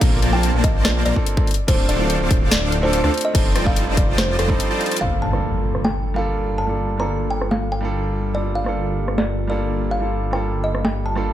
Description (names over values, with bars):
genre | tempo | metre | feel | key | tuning
future bass | 144 BPM | 4/4 | half-time | G minor | A4 = 441 Hz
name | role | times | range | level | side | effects
kalimba | melody | 0.0-11.3 s | A4 to Bb5 | -26 LUFS | equal | sidechain pumping, tape echo
warm baby grand piano | accompaniment | 0.0-11.3 s | G3 to A5 | -26 LUFS | right 4 dB | sidechain pumping, dub echo
dense compressed supersaw | riff | 0.0-5.0 s | Bb3 to D6 | -25 LUFS | equal | sidechain pumping, low-pass filter, dub echo
wide detuned saw bass | bass | 0.0-11.3 s | D1 to D2 | -23 LUFS | equal | chorus, sidechain pumping
electronic kick drum | drums | 0.0-4.6 s | none | -18 LUFS | equal | small room ambience
trap drum kit | drums | 0.0-11.2 s | crash cymbal, hi-hat, rim click, snare drum | -24 LUFS | equal | low-pass filter on hats, small room ambience, low-pass filter on snare, low-pass filter on cymbals
airy breathy pad | sustained chords | 5.0-11.3 s | G3 to A4 | -31 LUFS | left 1 dB | chorus, sidechain pumping
impact | sound effects | 5.0-6.7 s | none | -28 LUFS | equal | none
room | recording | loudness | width
light reverb | none | -17 LUFS | side -12 dB against mid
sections
0.0-5.0 A section; 5.0-11.3 B section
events
drop 0.0-5.0; break 4.6-5.0; drum fill 4.8; impact 5.0-6.7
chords
0.0 Bbmaj7; 1.5 Dm7; 3.3 F13; 5.0 Gm9